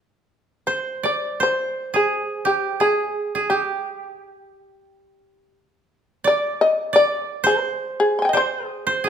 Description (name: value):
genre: japanese traditional, Japanese chamber music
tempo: 80-89 BPM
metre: 4/4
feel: rubato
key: unclear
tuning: A4 = 441 Hz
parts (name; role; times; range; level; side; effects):
- shamisen; melody; 0.7-9.0 s; G4 to C6; -20 LUFS; left 2 dB; none
- koto; second line; 0.7-9.1 s; G4 to D5; -22 LUFS; right 4 dB; none
room: moderate recital hall reverb, RT60 1.3 s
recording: minimal, uncompressed stereo recording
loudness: -19 LUFS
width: side -8 dB against mid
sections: 0.0-9.1 A section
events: none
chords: none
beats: 0.66 1.40 2.10 | 2.80 3.50 4.20 4.88 | 5.57 6.25 6.93 7.63 | 8.34 9.05